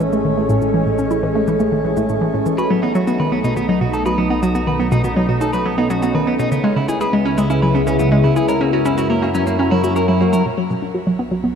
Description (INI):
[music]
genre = ambient, sequencer-driven space music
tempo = 122 BPM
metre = 4/4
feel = straight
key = unclear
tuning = A4 = 436 Hz
[part]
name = evolving wavetable pad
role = sustained chords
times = 0.0-11.6 s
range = C#3 to A#4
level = -19 LUFS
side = equal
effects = phaser, built-in reverb, shimmer reverb
[part]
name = hollow square pluck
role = riff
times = 0.0-11.5 s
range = A2 to C#5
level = -18 LUFS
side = equal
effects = chorus, vintage 12-bit sampler grit, tape echo, shimmer reverb
[part]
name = analog drone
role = bass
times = 0.0-11.6 s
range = A1 to F#2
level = -28 LUFS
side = equal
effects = chorus
[part]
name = cabasa and woodblock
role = percussion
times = 0.0-10.4 s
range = none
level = -41 LUFS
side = right 6 dB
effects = tape echo
[part]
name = electric guitar at the edge of break-up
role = arpeggios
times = 2.6-10.4 s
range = A#3 to B4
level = -23 LUFS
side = right 1 dB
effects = auto-pan, tape echo, shimmer reverb
[sound]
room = wet plate reverb, RT60 3.3 s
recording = cassette tape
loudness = -15 LUFS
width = side -7 dB against mid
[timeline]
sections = 0.0-10.5 A section; 10.5-11.6 B section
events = fade-in on synth drone 0.0-10.5; fade-in on drum 0.0-10.5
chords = 0.0 Amaj7; 2.6 B7; 6.5 C#m7; 8.5 F#7; 10.5 Bm7